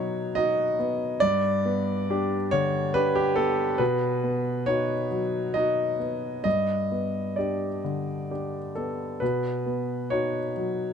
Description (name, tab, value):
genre	neoclassical minimalist piano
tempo	64-70 BPM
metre	3/4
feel	rubato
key	unclear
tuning	A4 = 441 Hz
part	warm grand piano	solo	0.0-10.9 s	G2 to D#5	-24 LUFS	equal	none
room	little or no reverb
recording	close, detailed microphones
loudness	-24 LUFS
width	side -7 dB against mid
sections	0.0-10.9 A section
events	none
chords	0.0 B; 1.2 G; 3.8 B; 6.5 G; 9.2 B